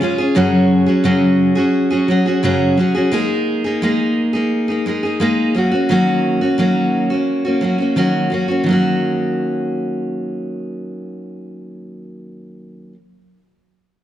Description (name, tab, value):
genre	pop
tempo	87 BPM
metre	4/4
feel	straight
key	Eb minor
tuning	A4 = 440 Hz
part	picked steel-string acoustic guitar	accompaniment	0.0-13.0 s	Gb2 to Ab4	-15 LUFS	equal	none
room	moderate scoring stage reverb, RT60 1.7 s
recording	dark, warm production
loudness	-14 LUFS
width	side -12 dB against mid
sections	0.0-8.7 A section; 8.7-11.4 B section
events	none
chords	0.4 Gbsus2; 3.1 Absus2; 5.5 Ebm7